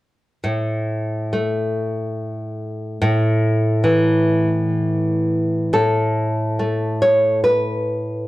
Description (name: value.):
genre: romantic piece for solo classical guitar.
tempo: 58-74 BPM.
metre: 3/4.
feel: rubato.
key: A major.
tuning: A4 = 440 Hz.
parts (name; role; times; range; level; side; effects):
nylon-string guitar; solo; 0.4-8.3 s; A2 to C#5; -17 LUFS; equal; none.
room: wet small room reverb, RT60 0.5 s.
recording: worn, warbling old tape, cassette tape, warbly pitch drift.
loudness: -17 LUFS.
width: side -17 dB against mid.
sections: 0.4-5.7 A section; 5.7-8.3 B section.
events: none.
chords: 0.4 A5; 5.7 N.C..